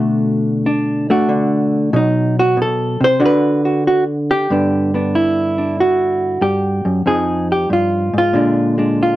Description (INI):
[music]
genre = solo jazz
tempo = 94 BPM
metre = 4/4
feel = swing 68% on 8ths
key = unclear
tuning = A4 = 440 Hz
[part]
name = hollow-body jazz guitar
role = solo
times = 0.0-9.2 s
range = F2 to C5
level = -14 LUFS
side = equal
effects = none
[sound]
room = light reverb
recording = dark, warm production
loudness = -14 LUFS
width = side -15 dB against mid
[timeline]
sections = 0.0-4.5 A section; 4.5-9.2 B section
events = hollow-body jazz guitar solo 0.0-4.5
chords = 0.0 Bm7; 1.9 B5; 3.2 D; 4.5 Gmaj7; 7.1 Fm7; 8.3 Bb7